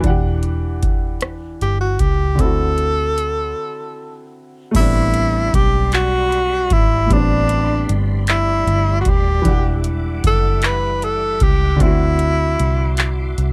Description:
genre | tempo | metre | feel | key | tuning
slow six-eight R&B | 51 BPM (dotted quarters) | 6/8 | straight | A dorian | A4 = 440 Hz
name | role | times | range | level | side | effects
clear baby grand piano | accompaniment | 0.0-13.5 s | A2 to F#5 | -27 LUFS | equal | none
vintage muted fingered electric bass | bass | 0.0-13.5 s | D#1 to D2 | -22 LUFS | equal | none
booming analog drum machine | drums | 0.0-13.5 s | crash cymbal, handclaps, hi-hat, kick drum, rim click | -21 LUFS | equal | none
breathy tenor saxophone | melody | 1.6-13.4 s | D4 to B4 | -22 LUFS | equal | none
tonewheel organ | sustained chords | 4.7-13.5 s | G3 to D6 | -34 LUFS | equal | chorus vibrato, slow rotary speaker
room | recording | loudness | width
little or no reverb | none | -17 LUFS | mono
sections
0.0-4.7 A section; 4.7-13.5 B section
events
break 3.6-4.7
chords
0.0 Em9; 2.4 D9; 4.7 Am11; 9.5 Em9; 11.8 D9

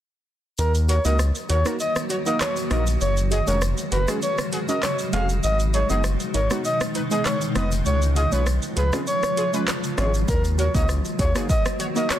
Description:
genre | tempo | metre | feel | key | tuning
dancehall | 99 BPM | 4/4 | straight | Eb minor | A4 = 445 Hz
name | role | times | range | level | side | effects
breathy flute-like synth lead | melody | 0.6-12.2 s | Bb4 to F5 | -26 LUFS | equal | chorus, tape echo
granular cloud pad | sustained chords | 1.3-12.2 s | Cb3 to Gb4 | -29 LUFS | left 1 dB | built-in reverb, sidechain pumping
round analog bass | bass | 0.6-11.3 s | F1 to Eb2 | -22 LUFS | equal | none
afro-pop drum kit | drums | 0.6-12.2 s | handclaps, hi-hat, kick drum, rim click, shaker | -27 LUFS | equal | soft clipping on snare
tube shaker and timbales | percussion | 0.6-12.2 s | none | -37 LUFS | left 4 dB | none
synth brass stab | accompaniment | 0.9-12.1 s | Ab3 to Db5 | -29 LUFS | right 2 dB | chorus
room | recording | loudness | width
light reverb, digital ambience | dense, heavily limited modern master | -20 LUFS | side -11 dB against mid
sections
0.6-12.2 A section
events
kick muted 0.6-10.3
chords
0.6 Ebm; 3.0 Gbsus2; 5.4 Abm; 7.9 Db; 10.3 Ebm

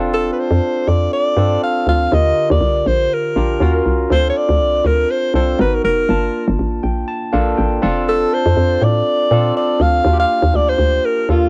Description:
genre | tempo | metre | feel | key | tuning
polished 1980s jazz-funk pop | 121 BPM | 4/4 | swing 54% on 16ths | unclear | A4 = 440 Hz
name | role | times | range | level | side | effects
barky tine electric piano | accompaniment | 0.0-11.5 s | D3 to A5 | -23 LUFS | equal | subtle chorus, cassette tape
hollow knocking FM bass | bass | 0.0-11.5 s | F1 to Bb2 | -19 LUFS | equal | none
breathy alto saxophone | melody | 0.1-11.5 s | F4 to F5 | -19 LUFS | equal | cassette tape
room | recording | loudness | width
light reverb | home recording on cassette | -16 LUFS | mono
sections
0.0-11.5 A section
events
tine electric piano fill 6.6-8.1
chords
0.0 F6; 2.1 Ebmaj9; 3.6 Ebm7; 4.1 Dm7; 5.6 Abm9; 6.1 Gm9; 7.8 Bbmaj9/F (rootless); 10.1 Ebmaj9

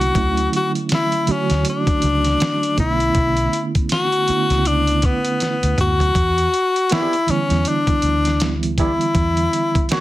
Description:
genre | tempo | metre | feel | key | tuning
R&B, neo-soul | 80 BPM | 4/4 | swing 59% on 16ths | E dorian | A4 = 444 Hz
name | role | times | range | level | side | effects
clear tenor saxophone | melody | 0.0-10.0 s | B3 to F#4 | -19 LUFS | left 2 dB | slapback echo
reed electric piano | accompaniment | 0.0-10.0 s | B2 to F#4 | -23 LUFS | right 5 dB | fast tremolo
vintage muted fingered electric bass | bass | 0.0-9.5 s | B1 to E2 | -21 LUFS | equal | none
dusty soul sampler-style drum kit | drums | 0.0-10.0 s | hi-hat, kick drum, snare drum, toms | -22 LUFS | equal | none
electric guitar through a small old amp | second line | 6.9-10.0 s | B3 to D5 | -25 LUFS | right 7 dB | none
room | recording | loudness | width
light reverb | dense, heavily limited modern master | -16 LUFS | side -15 dB against mid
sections
0.0-10.0 A section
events
drum fill 5.4-6.1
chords
0.1 Dmaj9; 2.8 Bm11; 6.1 Em7

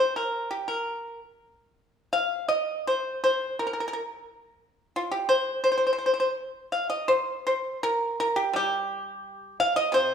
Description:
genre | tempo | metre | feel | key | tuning
chinese traditional, Chinese solo plucked strings | 80-88 BPM | 2/4 | rubato | C yu mode | A4 = 440 Hz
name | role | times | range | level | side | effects
pipa | solo | 0.0-10.1 s | C3 to F5 | -24 LUFS | equal | none
room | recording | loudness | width
moderate recital hall reverb, RT60 1.3 s | small room ambience | -24 LUFS | side -7 dB against mid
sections
0.0-7.1 A section; 7.1-10.1 B section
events
none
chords
none

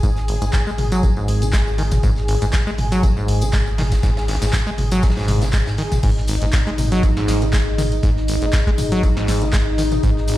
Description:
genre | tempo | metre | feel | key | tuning
acid house | 120 BPM | 4/4 | swing 54% on 16ths | unclear | A4 = 439 Hz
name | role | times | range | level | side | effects
lush unison pad | sustained chords | 0.0-10.4 s | D#4 to G#4 | -28 LUFS | left 3 dB | chorus, sidechain pumping
acid bass, saw | riff | 0.0-10.4 s | G#1 to G#3 | -23 LUFS | equal | tube saturation, sidechain pumping, tape echo
round analog bass | bass | 0.0-10.4 s | G#1 to G#2 | -22 LUFS | equal | sidechain pumping
electronic kick drum | drums | 0.0-10.1 s | none | -19 LUFS | equal | none
gated 80s drum kit | drums | 0.0-10.4 s | hi-hat, snare drum, tambourine | -35 LUFS | right 1 dB | high-pass filter on hats, high-pass filter on snare, high-pass filter on perc, high-pass filter on room
punchy analog drum machine | drums | 0.0-10.4 s | crash cymbal, handclaps, hi-hat, snare drum, toms | -26 LUFS | equal | none
tambourine | percussion | 0.0-10.4 s | none | -36 LUFS | left 2 dB | none
warbly tape-like pad | texture | 6.0-10.4 s | D#4 to D#5 | -25 LUFS | left 1 dB | chorus, built-in reverb, sidechain pumping
room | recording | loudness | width
light reverb | played on a big sound system in a bare room, stone room reverb | -16 LUFS | side -15 dB against mid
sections
0.0-6.0 A section; 6.0-10.4 B section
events
drop 6.0-10.4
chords
0.0 G#5

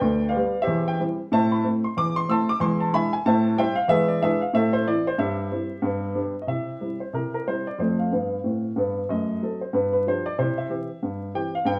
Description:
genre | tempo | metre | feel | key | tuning
jazz, stride piano | 186 BPM | 4/4 | swing 60% on 8ths | C major | A4 = 444 Hz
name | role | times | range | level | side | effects
warm upright piano | solo | 0.0-11.8 s | D2 to E6 | -24 LUFS | equal | none
room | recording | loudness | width
wet studio reverb, RT60 0.8 s | band playing live in one room, vinyl crackle | -24 LUFS | mono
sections
0.0-6.5 A section; 6.5-11.8 B section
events
none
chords
0.0 G7/D; 0.7 C/E; 1.3 Am; 2.6 E7; 3.3 Am7; 3.9 E7; 4.5 Am; 5.2 C/G; 5.8 G; 6.5 C; 7.8 F; 9.1 F#dim7; 9.7 G7; 10.4 C

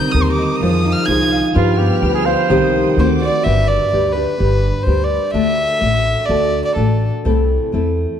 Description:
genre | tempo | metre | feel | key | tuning
mexican folk, mariachi | 127 BPM | 2/4 | rubato | C minor, G major from 3.5 s | A4 = 439 Hz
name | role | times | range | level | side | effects
warm violin | melody | 0.0-7.1 s | A4 to Ab6 | -19 LUFS | right 1 dB | none
nylon-string guitar | accompaniment | 0.0-8.2 s | C3 to C5 | -19 LUFS | left 4 dB | none
rich chamber violin section | sustained chords | 0.0-3.5 s | Ab4 to F6 | -28 LUFS | right 1 dB | none
concert harp | arpeggios | 0.0-5.7 s | Eb3 to F5 | -19 LUFS | right 2 dB | none
upright bass | bass | 0.1-8.0 s | G1 to G2 | -18 LUFS | equal | none
mellow trumpet | second line | 1.6-3.2 s | F4 to C5 | -21 LUFS | right 5 dB | none
room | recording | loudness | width
moderate concert hall reverb, RT60 2.2 s | dark, warm production | -13 LUFS | side -9 dB against mid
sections
0.0-3.5 A section; 3.5-8.2 B section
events
none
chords
0.0 Cm7; 0.6 Fm7; 1.6 G7; 2.5 Cm; 3.0 D7; 3.5 G; 5.3 D; 7.3 Am/C

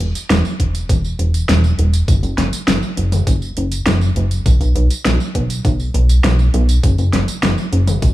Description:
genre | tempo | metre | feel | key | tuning
synthwave | 101 BPM | 4/4 | straight | unclear | A4 = 438 Hz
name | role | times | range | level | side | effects
chorused synth bass | bass | 0.0-8.1 s | E1 to B1 | -15 LUFS | equal | sidechain pumping
pop drum kit | drums | 0.0-8.1 s | hi-hat, snare drum, tambourine, toms | -20 LUFS | equal | overdrive
electronic kick drum | drums | 0.6-8.1 s | none | -15 LUFS | equal | overdrive
room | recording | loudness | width
light reverb | small room ambience | -13 LUFS | side -15 dB against mid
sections
0.0-8.1 A section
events
none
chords
none

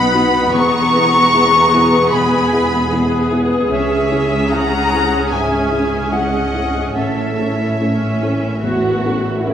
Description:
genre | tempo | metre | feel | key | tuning
cinematic, emotional film score for orchestra | 71-76 BPM | 4/4 | rubato | unclear | A4 = 440 Hz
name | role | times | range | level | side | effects
warm symphonic violin section | melody | 0.0-9.4 s | E5 to C#6 | -20 LUFS | left 2 dB | none
concert flute | second line | 0.0-9.4 s | E5 to C#6 | -21 LUFS | right 1 dB | none
rich symphonic violin section | second line | 0.0-9.4 s | C#5 to A#5 | -26 LUFS | left 2 dB | none
felt-muted upright piano | accompaniment | 0.0-9.5 s | A1 to A4 | -21 LUFS | left 2 dB | none
rich symphonic viola section | accompaniment | 0.0-9.5 s | B3 to A4 | -20 LUFS | equal | none
concert harp | arpeggios | 0.0-9.5 s | A2 to G#5 | -24 LUFS | left 4 dB | none
warm symphonic cello section | bass | 0.0-9.5 s | C#2 to B2 | -23 LUFS | right 2 dB | none
warm symphonic double bass section | bass | 0.0-9.5 s | E1 to C#2 | -25 LUFS | right 3 dB | none
room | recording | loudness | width
wet recital hall reverb, RT60 1.6 s | small room reverb | -13 LUFS | side -9 dB against mid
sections
0.0-9.5 A section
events
none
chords
0.0 B; 0.5 E; 3.7 C#m; 7.0 A

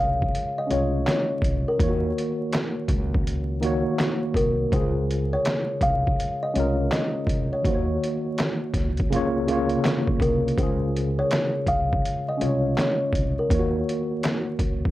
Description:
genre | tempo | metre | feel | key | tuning
lo-fi hip hop | 82 BPM | 4/4 | swing 65% on 16ths | Db major | A4 = 440 Hz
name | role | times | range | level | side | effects
kalimba | melody | 0.0-14.1 s | Bb4 to F5 | -27 LUFS | equal | low-pass filter, plate reverb
tine electric piano | accompaniment | 0.0-14.9 s | Db3 to Db5 | -26 LUFS | equal | medium stereo tremolo, cassette tape, low-pass filter, plate reverb
upright bass | bass | 0.0-14.9 s | C2 to Eb2 | -28 LUFS | equal | none
trip hop sampler-style drum kit | drums | 0.2-14.9 s | handclaps, hi-hat, kick drum, snare drum | -26 LUFS | equal | overdrive
room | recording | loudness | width
moderate studio reverb, RT60 0.6 s | vinyl crackle | -21 LUFS | side -15 dB against mid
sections
0.0-10.6 A section; 10.6-14.9 A section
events
none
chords
0.0 Dbmaj7; 1.8 Ebm7; 4.7 Dbmaj7; 7.6 Ebm7; 9.1 Db6; 10.6 Dbmaj7; 13.5 Ebm7

